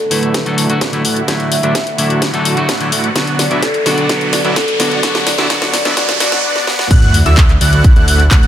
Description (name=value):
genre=EDM, festival progressive house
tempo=128 BPM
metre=4/4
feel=straight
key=D major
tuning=A4 = 440 Hz
part: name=marimba with medium mallets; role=melody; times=0.0-6.4 s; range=A4 to E5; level=-21 LUFS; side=left 1 dB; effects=dub echo
part: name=dark symphonic string section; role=sustained chords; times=0.0-8.5 s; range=D3 to F#4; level=-27 LUFS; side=right 1 dB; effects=none
part: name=fat analog bass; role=bass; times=0.0-8.5 s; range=B1 to D2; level=-19 LUFS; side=equal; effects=none
part: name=riser and sub drop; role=sound effects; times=1.4-8.5 s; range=none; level=-20 LUFS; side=right 1 dB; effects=none
part: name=clean electric guitar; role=accompaniment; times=0.1-6.4 s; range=D3 to A4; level=-19 LUFS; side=left 1 dB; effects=vintage 12-bit sampler grit, sidechain pumping, dub echo
part: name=dense compressed supersaw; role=riff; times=0.1-8.5 s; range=A3 to F#5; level=-19 LUFS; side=right 2 dB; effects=sidechain pumping, low-pass filter, dub echo
part: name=house drum kit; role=drums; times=0.1-8.5 s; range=crash cymbal, handclaps, hi-hat, snare drum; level=-17 LUFS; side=left 1 dB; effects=high-pass filter on hats, high-pass filter on toms, high-pass filter on snare, high-pass filter on cymbals, high-pass filter on room
part: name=electronic kick drum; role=drums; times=0.3-8.4 s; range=none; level=-10 LUFS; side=equal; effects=high-pass filter on kick, high-pass filter on room
part: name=wide unison lead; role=arpeggios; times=6.9-8.5 s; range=E6 to F#6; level=-18 LUFS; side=equal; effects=sidechain pumping, dub echo
room=light reverb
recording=high-pass filter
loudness=-10 LUFS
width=side -10 dB against mid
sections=0.0-6.9 A section; 6.9-8.5 B section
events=build-up 0.0-6.9; drum fill 0.0-6.4, 6.6-6.9; filter sweep on supersaw synth 0.0-6.9; filter sweep 0.0-6.9; riser 1.4-6.4; drop 6.9-8.5; impact 6.9-8.5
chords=0.0 Dadd9; 3.2 Bm; 6.9 Dadd9